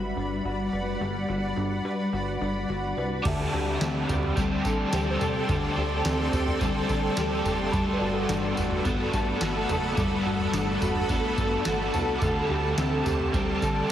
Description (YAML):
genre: dream pop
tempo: 107 BPM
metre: 4/4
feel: straight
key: G major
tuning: A4 = 438 Hz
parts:
  - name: granular cloud pad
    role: sustained chords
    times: 0.0-13.9 s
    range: G3 to C6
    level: -30 LUFS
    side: equal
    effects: built-in reverb
  - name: mellow electric guitar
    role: arpeggios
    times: 0.0-13.9 s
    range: D3 to B4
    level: -29 LUFS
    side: left 2 dB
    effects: ensemble chorus, digital delay
  - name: plucky analog bass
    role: bass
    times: 0.0-13.9 s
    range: F#1 to D3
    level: -32 LUFS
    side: equal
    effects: none
  - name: overdriven electric guitar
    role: accompaniment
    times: 3.2-13.9 s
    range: D3 to A4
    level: -31 LUFS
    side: right 2 dB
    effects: tremolo, ensemble chorus
  - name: booming analog drum machine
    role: drums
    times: 3.2-13.9 s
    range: crash cymbal, kick drum, snare drum, tambourine, toms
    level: -31 LUFS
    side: right 1 dB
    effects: none
  - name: soft synth bell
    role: texture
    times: 3.3-9.6 s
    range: A4 to E5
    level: -41 LUFS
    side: right 3 dB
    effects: none
room: moderate concert hall reverb, RT60 2.0 s, digital ambience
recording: heavily compressed radio sound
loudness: -24 LUFS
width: side -11 dB against mid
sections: 0.0-3.2 A section; 3.2-13.9 B section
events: none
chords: 0.0 Gmaj7; 3.2 D7sus4; 7.7 Gmaj9; 12.2 D7sus4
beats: 0.44 | 1.00 1.56 2.13 2.69 | 3.25 3.81 4.37 4.93 | 5.49 6.05 6.61 7.17 | 7.73 8.29 8.86 9.41 | 9.98 10.54 11.10 11.66 | 12.22 12.78 13.34 13.90